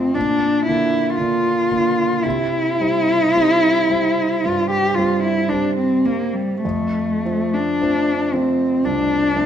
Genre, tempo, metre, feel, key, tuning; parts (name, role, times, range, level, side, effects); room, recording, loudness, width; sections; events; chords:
classical, romantic duo for cello and grand piano; 49-60 BPM; 4/4; rubato; F major; A4 = 441 Hz
dark cello; melody; 0.0-9.5 s; G3 to G4; -17 LUFS; left 1 dB
clear concert grand piano; accompaniment; 0.0-9.5 s; C2 to D4; -22 LUFS; right 3 dB
moderate recital hall reverb, RT60 1.6 s; minimal, uncompressed stereo recording; -16 LUFS; side -9 dB against mid
0.0-9.5 A section
0.2 Bb; 2.2 C; 6.6 F